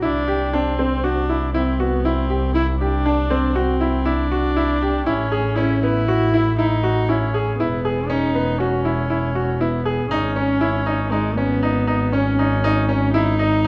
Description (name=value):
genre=contemporary instrumental, chamber music in an uneven meter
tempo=119 BPM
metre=5/4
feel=straight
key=unclear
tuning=A4 = 440 Hz
part: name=warm viola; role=second line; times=0.0-13.7 s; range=G#3 to E4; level=-25 LUFS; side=equal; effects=none
part: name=bright baby grand piano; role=arpeggios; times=0.0-13.7 s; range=B3 to G#4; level=-24 LUFS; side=equal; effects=none
part: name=rich double bass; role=bass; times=0.0-13.7 s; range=E1 to C2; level=-25 LUFS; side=equal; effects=none
room=wet recital hall reverb, RT60 1.4 s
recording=dark, warm production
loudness=-20 LUFS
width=mono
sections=0.0-10.1 A section; 10.1-13.7 B section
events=none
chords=0.0 C; 5.1 A; 7.6 E; 10.1 G#sus4